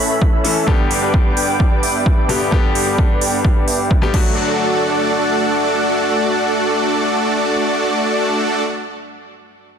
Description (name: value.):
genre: EDM, festival progressive house.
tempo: 130 BPM.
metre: 4/4.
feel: straight.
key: D major.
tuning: A4 = 440 Hz.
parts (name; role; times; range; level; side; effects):
bright grand piano; accompaniment; 0.0-9.8 s; G2 to A4; -23 LUFS; left 4 dB; sidechain pumping, tape echo.
lush unison pad; sustained chords; 0.0-8.6 s; D4 to D6; -23 LUFS; right 1 dB; chorus, sidechain pumping.
supersaw chords; riff; 0.0-8.6 s; A3 to G5; -18 LUFS; equal; sidechain pumping, low-pass filter, tape echo.
electronic kick drum; drums; 0.2-4.2 s; none; -15 LUFS; equal; none.
big-room dance drum kit; drums; 0.4-4.2 s; crash cymbal, hi-hat; -23 LUFS; right 3 dB; soft clipping on snare.
room: light reverb, digital ambience.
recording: dense, heavily limited modern master.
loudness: -14 LUFS.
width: side -7 dB against mid.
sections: 0.0-4.4 A section; 4.4-8.1 B section.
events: none.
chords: 0.0 A; 0.7 G; 4.1 D.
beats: 0.21 | 0.68 1.14 1.60 2.06 | 2.52 2.98 3.45 3.91 | 4.37 4.83 5.29 5.75 | 6.21 6.68 7.14 7.60.